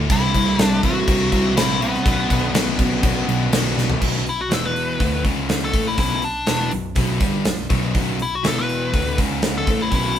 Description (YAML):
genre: hard rock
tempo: 122 BPM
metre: 4/4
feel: straight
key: B phrygian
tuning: A4 = 440 Hz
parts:
  - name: overdriven tonewheel organ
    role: sustained chords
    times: 0.0-4.0 s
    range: D4 to F#5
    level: -34 LUFS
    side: left 1 dB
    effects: none
  - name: cranked stack guitar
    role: riff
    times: 0.0-10.2 s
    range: B1 to A3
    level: -25 LUFS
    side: left 6 dB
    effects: overdrive
  - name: sludgy distorted guitar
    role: riff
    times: 0.0-10.2 s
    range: B1 to A3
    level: -25 LUFS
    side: right 5 dB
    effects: overdrive
  - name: tine electric piano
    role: bass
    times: 0.0-10.2 s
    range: E1 to D2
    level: -25 LUFS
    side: equal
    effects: overdrive, fast stereo tremolo
  - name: nasal lead guitar with a parked wah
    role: melody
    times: 0.1-10.2 s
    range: B3 to B4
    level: -23 LUFS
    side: left 2 dB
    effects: overdrive
  - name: gated 80s drum kit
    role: drums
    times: 0.1-10.2 s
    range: crash cymbal, hi-hat, kick drum, snare drum, toms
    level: -22 LUFS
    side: equal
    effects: none
room: moderate studio reverb, RT60 0.8 s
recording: band playing live in one room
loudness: -17 LUFS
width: side -10 dB against mid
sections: 0.0-4.0 A section; 4.0-10.2 B section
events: drum fill 3.8; lead electric guitar solo 4.0-10.2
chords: 0.1 C; 2.0 Bm; 4.0 B5; 4.5 E5; 5.0 Bm; 5.2 C#5; 5.7 Bm; 8.4 E5; 8.9 Bm; 9.2 C#5; 9.7 B5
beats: | 0.09 0.58 1.07 1.56 | 2.05 2.54 3.03 3.52 | 4.01 4.50 5.00 5.49 | 5.98 6.47 6.96 7.46 | 7.95 8.44 8.93 9.43 | 9.92